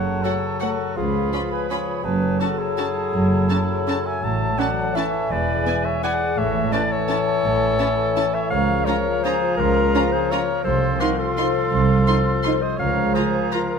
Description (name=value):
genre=classical, orchestral ballroom waltz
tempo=167 BPM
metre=3/4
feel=uneven beats, rubato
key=Bb minor from 8.5 s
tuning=A4 = 444 Hz
part: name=mellow oboe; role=second line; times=0.0-13.8 s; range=E4 to E5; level=-29 LUFS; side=right 3 dB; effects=none
part: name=small flute group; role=second line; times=0.0-13.8 s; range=G#5 to C6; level=-31 LUFS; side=right 1 dB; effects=none
part: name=warm clarinet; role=second line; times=0.0-13.8 s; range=G#4 to A5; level=-25 LUFS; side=left 3 dB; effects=none
part: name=clear bassoon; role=accompaniment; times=0.0-13.8 s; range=E3 to F#3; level=-30 LUFS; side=right 2 dB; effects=none
part: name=mellow French horn section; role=sustained chords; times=0.0-13.8 s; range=E3 to C5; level=-30 LUFS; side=left 6 dB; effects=none
part: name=concert harp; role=arpeggios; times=0.0-13.8 s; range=E2 to F5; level=-28 LUFS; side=left 12 dB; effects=none
part: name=dark symphonic double bass section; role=bass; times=0.0-13.1 s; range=E1 to C#2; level=-27 LUFS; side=right 4 dB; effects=none
part: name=warm symphonic cello section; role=bass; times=0.0-13.1 s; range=C2 to A2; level=-26 LUFS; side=right 3 dB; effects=none
part: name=warm symphonic violin section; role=second line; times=0.2-13.6 s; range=E4 to F#4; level=-35 LUFS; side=left 3 dB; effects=none
part: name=dark symphonic viola section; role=accompaniment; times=0.2-13.6 s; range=A3 to F4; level=-30 LUFS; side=right 4 dB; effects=none
part: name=warm symphonic violin section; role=melody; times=0.3-13.6 s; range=F#5 to C6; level=-31 LUFS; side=left 3 dB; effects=none
room=moderate scoring stage reverb, RT60 1.8 s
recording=none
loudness=-18 LUFS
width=side -6 dB against mid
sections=0.0-13.8 A section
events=none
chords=0.0 F#m; 1.0 C#7; 2.1 F#m; 4.2 A; 5.3 E7; 6.4 A; 8.5 Bbm/Db; 10.7 F7/C; 12.8 Bbm/Db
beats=0.24 0.62 | 0.98 1.34 1.71 | 2.06 2.42 2.79 | 3.15 3.51 3.88 | 4.23 4.59 4.96 | 5.31 5.66 6.03 | 6.37 6.73 7.10 | 7.45 7.80 8.17 | 8.52 8.87 9.24 | 9.59 9.94 10.31 | 10.66 11.01 11.37 | 11.72 12.07 12.45 | 12.80 13.16 13.53